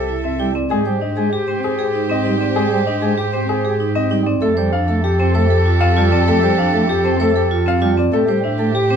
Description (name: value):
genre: classical, minimalist pattern music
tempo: 194 BPM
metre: 6/4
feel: straight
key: unclear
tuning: A4 = 442 Hz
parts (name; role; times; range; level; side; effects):
- clear grand piano; melody; 0.0-9.0 s; G4 to F5; -22 LUFS; left 7 dB; none
- bright oboe; second line; 0.0-9.0 s; G4 to A4; -28 LUFS; right 4 dB; none
- warm studio string section; sustained chords; 0.0-9.0 s; G4 to E5; -25 LUFS; right 1 dB; none
- vibraphone with hard mallets; arpeggios; 0.0-9.0 s; C4 to C5; -20 LUFS; right 5 dB; none
- warm studio double bass section; bass; 0.0-9.0 s; C2 to A2; -20 LUFS; equal; none
- chamber organ, principal chorus; accompaniment; 0.4-9.0 s; G3 to C4; -22 LUFS; equal; none
room: light reverb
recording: dark, warm production, nothing above 10.9 kHz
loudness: -14 LUFS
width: side -7 dB against mid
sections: 0.0-9.0 A section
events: none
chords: 0.0 C6; 0.7 Abmaj7; 4.4 Fadd9; 8.1 Am7